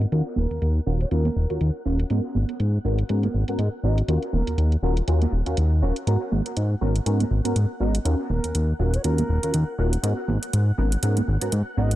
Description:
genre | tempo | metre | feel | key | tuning
filtered disco house | 121 BPM | 4/4 | swing 57% on 16ths | G# dorian | A4 = 440 Hz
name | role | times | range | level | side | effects
string machine, full ensemble | sustained chords | 0.0-12.0 s | F#6 | -44 LUFS | equal | ensemble chorus, low-pass filter
fat analog bass | bass | 0.0-12.0 s | D#1 to G#2 | -21 LUFS | equal | low-pass filter
electronic hi-hat | drums | 0.0-12.0 s | none | -33 LUFS | right 3 dB | low-pass filter on hats, low-pass filter on perc, low-pass filter on snare, low-pass filter on cymbals
tambourine and congas | percussion | 0.0-12.0 s | none | -31 LUFS | right 5 dB | low-pass filter on perc
funky polysynth comp | accompaniment | 0.1-11.9 s | B3 to A#4 | -29 LUFS | right 1 dB | chorus, phaser, low-pass filter, dub echo
bright reedy concert flute | melody | 0.4-4.7, 7.8-11.9 s | A#4 to D#5 | -35 LUFS | right 1 dB | low-pass filter, dub echo
room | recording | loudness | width
little or no reverb | echo-heavy mix | -21 LUFS | side -15 dB against mid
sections
0.0-12.0 A section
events
filter sweep 0.0-12.0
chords
0.1 D#m7; 2.1 G#m11; 4.1 D#m7; 6.1 G#m11; 8.1 D#m7; 10.0 G#m11

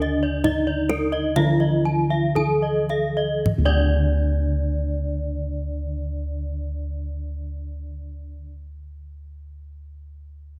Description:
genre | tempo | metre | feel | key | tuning
Balinese gamelan | 52-71 BPM | 4/4 | straight | unclear | A4 = 438 Hz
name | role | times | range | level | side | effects
gamelan-type bronze metallophone | melody | 0.0-8.5 s | D4 to A4-45c | -29 LUFS | equal | none
gamelan-type bronze metallophone | accompaniment | 0.0-8.5 s | D3 to E3+50c | -35 LUFS | equal | none
gamelan-type bronze metallophone | arpeggios | 0.0-8.5 s | Bb4-40c to A5-45c | -32 LUFS | equal | none
gamelan-type bossed gongs | bass | 0.0-8.4 s | D2 to Eb4 | -27 LUFS | equal | none
kendang | percussion | 0.0-4.0 s | none | -31 LUFS | equal | none
gamelan-type bronze metallophone | arpeggios | 0.2-8.5 s | D5 to E5+50c | -33 LUFS | equal | none
room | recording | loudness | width
light reverb | close, detailed microphones | -23 LUFS | mono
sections
0.0-3.5 A section; 3.5-8.0 B section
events
slowing down 0.0-3.5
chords
none

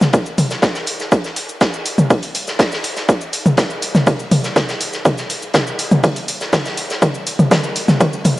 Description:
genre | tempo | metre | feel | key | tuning
melodic techno | 122 BPM | 4/4 | straight | none | none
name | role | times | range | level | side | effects
huge arena drum kit | drums | 0.0-8.4 s | hi-hat, snare drum | -23 LUFS | equal | sidechain pumping on hats, high-pass filter on hats, studio ambience, cassette tape, high-pass filter on snare, high-pass filter on room
punchy analog drum machine | drums | 0.0-8.4 s | hi-hat, shaker, toms | -17 LUFS | equal | overdrive, studio ambience, cassette tape
electronic kick drum | drums | 0.1-8.1 s | none | -14 LUFS | equal | overdrive, high-pass filter on kick, studio ambience, cassette tape
room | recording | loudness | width
moderate spring reverb, RT60 1.6 s, studio reverb | home recording on cassette | -14 LUFS | side -17 dB against mid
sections
0.0-8.4 A section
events
build-up 0.0-8.4; drum fill 4.1-8.4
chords
none

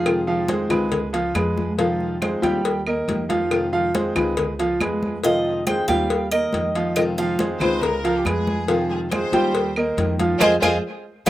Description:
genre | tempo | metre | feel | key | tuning
latin, Cuban son and guajira | 139 BPM | 4/4 | straight | unclear | A4 = 440 Hz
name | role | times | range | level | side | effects
Cuban tres | melody | 0.0-1.1, 5.2-11.3 s | Ab4 to Ab5 | -24 LUFS | right 1 dB | none
nylon-string guitar | accompaniment | 0.0-11.3 s | C3 to Ab4 | -26 LUFS | left 3 dB | slapback echo
warm grand piano | arpeggios | 0.0-11.3 s | F3 to G5 | -22 LUFS | right 2 dB | slapback echo
upright bass | bass | 0.0-11.3 s | Db2 to F2 | -29 LUFS | equal | none
claves | percussion | 0.1-11.3 s | none | -29 LUFS | right 4 dB | none
congas | percussion | 0.1-11.3 s | none | -29 LUFS | left 1 dB | none
cowbell | percussion | 0.1-11.3 s | none | -27 LUFS | left 5 dB | slapback echo
clear studio violin section | second line | 7.6-11.3 s | F4 to C5 | -26 LUFS | left 2 dB | none
room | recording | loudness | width
little or no reverb | recorded outdoors, with no room sound | -19 LUFS | side -14 dB against mid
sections
0.0-11.3 A section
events
band accent 10.4-11.3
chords
0.1 Fm7; 0.9 Db7; 1.8 Fm7; 2.6 Eb; 3.5 Fm7; 4.4 Db7; 5.2 Fm7; 6.1 Eb; 7.0 Fm7; 7.8 Db7; 8.7 Fm7; 9.5 Eb; 10.4 Fm7

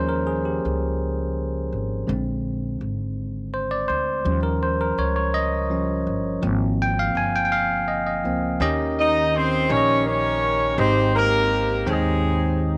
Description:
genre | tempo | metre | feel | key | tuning
slow gospel | 55 BPM (dotted quarters) | 6/8 | straight | unclear | A4 = 440 Hz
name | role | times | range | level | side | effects
bell-like tine electric piano | accompaniment | 0.0-12.8 s | Ab2 to Ab5 | -26 LUFS | equal | none
upright bass | bass | 0.0-12.8 s | G1 to Eb2 | -29 LUFS | equal | none
dark horn section | melody | 9.0-12.8 s | Ab3 to Eb5 | -23 LUFS | equal | none
room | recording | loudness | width
light reverb, small room ambience | none | -22 LUFS | mono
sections
0.0-8.6 A section; 8.6-12.8 B section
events
tine electric piano solo 0.0-8.6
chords
0.0 Eb7; 2.1 Bb7; 4.3 Eb7; 6.4 Ab6; 8.6 Eb7; 10.8 Abmaj7

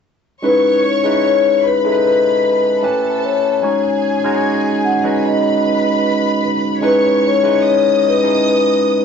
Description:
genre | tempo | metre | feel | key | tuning
soul | 75 BPM | 4/4 | swing 54% on 16ths | C# minor | A4 = 440 Hz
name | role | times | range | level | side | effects
rich studio string section | second line | 0.4-9.0 s | G#4 to D#6 | -22 LUFS | right 1 dB | none
barky tine electric piano | accompaniment | 0.4-9.0 s | G#3 to C#5 | -17 LUFS | right 3 dB | phaser
vibraphone with soft mallets | melody | 0.5-9.0 s | B4 to F#5 | -14 LUFS | left 4 dB | none
room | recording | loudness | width
moderate studio reverb, RT60 0.5 s | rough rehearsal-room recording, nothing above 7.9 kHz | -12 LUFS | side -6 dB against mid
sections
0.4-9.0 A section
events
none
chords
0.4 C#m9; 2.8 A9; 3.6 G#7sus4; 6.8 C#m9

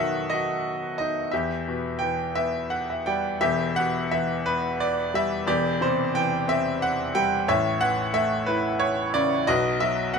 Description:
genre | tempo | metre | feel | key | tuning
classical, lyrical solo piano | 60 BPM (dotted quarters) | 6/8 | rubato | E minor | A4 = 440 Hz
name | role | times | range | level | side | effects
bright grand piano | solo | 0.0-10.2 s | E1 to G5 | -22 LUFS | equal | none
room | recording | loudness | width
light reverb | minimal, uncompressed stereo recording | -22 LUFS | side -5 dB against mid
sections
0.0-3.4 A section; 3.4-10.2 A section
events
grand piano fill 2.4-3.4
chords
0.0 B7; 1.3 Em; 5.5 C/E; 7.5 A; 9.5 B

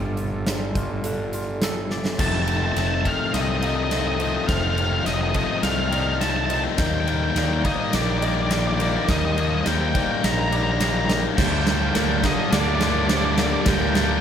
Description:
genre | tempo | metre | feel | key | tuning
post-rock | 104 BPM | 4/4 | straight | unclear | A4 = 440 Hz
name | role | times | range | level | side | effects
evolving wavetable pad | sustained chords | 0.0-14.2 s | G3 to Bb5 | -35 LUFS | equal | phaser, built-in reverb
twangy electric guitar | arpeggios | 0.0-14.2 s | D3 to D5 | -35 LUFS | left 1 dB | none
fuzz fingered electric bass | bass | 0.0-14.2 s | F1 to Eb2 | -26 LUFS | right 1 dB | overdrive
huge arena drum kit | drums | 0.2-14.1 s | crash cymbal, hi-hat, kick drum, ride cymbal, snare drum | -25 LUFS | right 1 dB | none
felt-muted upright piano | arpeggios | 0.5-14.2 s | A4 to F5 | -35 LUFS | right 5 dB | none
octave-fuzz lead guitar | melody | 2.2-14.2 s | D5 to Bb5 | -27 LUFS | right 1 dB | distortion
overdriven semi-hollow guitar | riff | 2.2-14.2 s | F2 to Eb4 | -25 LUFS | left 8 dB | none
crunchy overdriven guitar | riff | 11.4-14.2 s | G2 to G3 | -26 LUFS | right 6 dB | none
room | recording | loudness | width
light reverb | none | -19 LUFS | side -8 dB against mid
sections
0.0-2.2 A section; 2.2-14.2 B section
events
drum fill 1.9, 2.2-14.2; build-up 2.2-14.2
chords
0.0 Dm/G; 2.2 F7; 6.8 Ebmaj7; 11.4 Gm/D

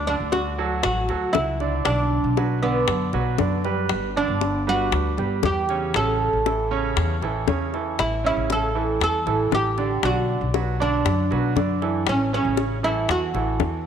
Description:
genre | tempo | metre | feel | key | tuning
latin, Cuban son and guajira | 118 BPM | 4/4 | straight | unclear | A4 = 436 Hz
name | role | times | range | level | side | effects
oud | melody | 0.0-13.9 s | B3 to A4 | -24 LUFS | right 1 dB | none
upright bass | bass | 0.0-13.9 s | G1 to F#2 | -26 LUFS | left 2 dB | none
bright baby grand piano | arpeggios | 0.1-13.8 s | C#3 to D5 | -26 LUFS | right 6 dB | none
bongos | percussion | 0.3-13.9 s | none | -27 LUFS | left 14 dB | none
room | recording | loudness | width
moderate echo chamber reverb, RT60 2.4 s | 1960s-style stereo with parts hard left and right | -20 LUFS | side -8 dB against mid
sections
0.0-13.9 A section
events
none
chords
0.0 D; 1.9 Bm; 3.9 G; 5.9 A; 10.0 Bm; 12.1 A

